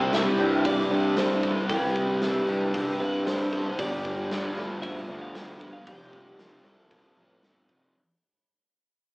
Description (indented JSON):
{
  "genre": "rock, shoegaze and dream pop",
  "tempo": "115 BPM",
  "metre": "4/4",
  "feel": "straight",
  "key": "unclear",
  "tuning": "A4 = 441 Hz",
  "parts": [
    { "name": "twelve-string electric guitar", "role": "melody", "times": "0.0-7.7 s", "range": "B4 to G5", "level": "-33 LUFS", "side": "equal", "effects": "none" },
    { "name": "picked twelve-string acoustic guitar", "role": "arpeggios", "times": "0.0-8.0 s", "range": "E4 to B4", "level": "-30 LUFS", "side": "equal", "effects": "analog delay" },
    { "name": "crunchy overdriven guitar", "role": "riff", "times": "0.0-7.9 s", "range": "G2 to G4", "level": "-35 LUFS", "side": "equal", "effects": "none" },
    { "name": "thick fuzz guitar", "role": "riff", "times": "0.0-8.0 s", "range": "F2 to C4", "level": "-32 LUFS", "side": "equal", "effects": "distortion" },
    { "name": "fuzz picked electric bass", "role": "bass", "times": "0.0-7.9 s", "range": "F1 to G2", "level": "-30 LUFS", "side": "equal", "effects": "overdrive" },
    { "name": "big rock drum kit", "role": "drums", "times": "0.1-7.8 s", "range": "hi-hat, kick drum, snare drum", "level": "-33 LUFS", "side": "equal", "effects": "none" }
  ],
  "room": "moderate small room ambience, RT60 0.5 s",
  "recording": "rough rehearsal-room recording, warm saturation, small speaker sound",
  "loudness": "-24 LUFS",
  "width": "side -35 dB against mid",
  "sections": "0.0-8.0 A section",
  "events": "fade-out 0.0-8.0",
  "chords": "0.0 Cmaj7; 3.8 G5; 5.9 Fsus2"
}